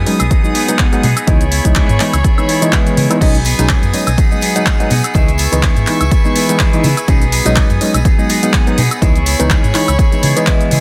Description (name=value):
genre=filtered disco house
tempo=124 BPM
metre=4/4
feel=swing 55% on 16ths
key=C# minor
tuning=A4 = 439 Hz
part: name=rich chamber violin section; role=sustained chords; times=0.0-10.8 s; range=G#4 to D#6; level=-25 LUFS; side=equal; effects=sidechain pumping
part: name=electric guitar with an envelope filter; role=riff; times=0.0-10.8 s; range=F#3 to G#4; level=-23 LUFS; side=equal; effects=sidechain pumping
part: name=fingered electric bass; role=bass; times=0.0-10.8 s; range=B1 to C#3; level=-18 LUFS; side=equal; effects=sidechain pumping
part: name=overdriven reed electric piano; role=accompaniment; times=0.1-10.8 s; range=E3 to D#5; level=-19 LUFS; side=equal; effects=phaser, sidechain pumping
part: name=punchy analog drum machine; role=drums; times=0.1-10.8 s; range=crash cymbal, handclaps, hi-hat, shaker, woodblock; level=-22 LUFS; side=equal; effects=overdrive, sidechain pumping on hats, sidechain pumping on perc, sidechain pumping on cymbals
part: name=electronic kick drum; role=drums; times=0.3-10.6 s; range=none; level=-16 LUFS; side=equal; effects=overdrive
part: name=tambourine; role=percussion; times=3.2-10.8 s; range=none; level=-32 LUFS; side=equal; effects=sidechain pumping on perc
room=little or no reverb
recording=none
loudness=-13 LUFS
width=mono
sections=0.0-10.8 A section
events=none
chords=0.0 B6; 1.3 C#m7; 3.2 B6; 5.1 C#m7; 7.1 B6; 9.0 C#m7